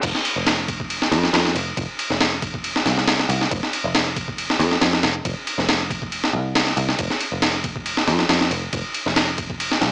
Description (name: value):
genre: breakbeat, breaks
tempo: 138 BPM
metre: 4/4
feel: swing 53% on 16ths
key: unclear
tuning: A4 = 440 Hz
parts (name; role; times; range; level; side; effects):
- picked electric bass; bass; 0.0-9.9 s; F1 to F2; -24 LUFS; equal; none
- breakbeat sampler-style drum kit; drums; 0.0-9.9 s; crash cymbal, kick drum, ride cymbal, snare drum; -19 LUFS; equal; low-pass filter on snare, small room ambience, low-pass filter on cymbals, low-pass filter on kick
room: light reverb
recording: small speaker sound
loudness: -18 LUFS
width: side -28 dB against mid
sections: 0.0-9.9 A section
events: drop 0.0-9.9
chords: none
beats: | 0.03 0.47 0.90 1.34 | 1.77 2.21 2.64 3.08 | 3.51 3.94 4.38 4.82 | 5.25 5.68 6.12 6.55 | 6.99 7.42 7.86 8.29 | 8.73 9.16 9.60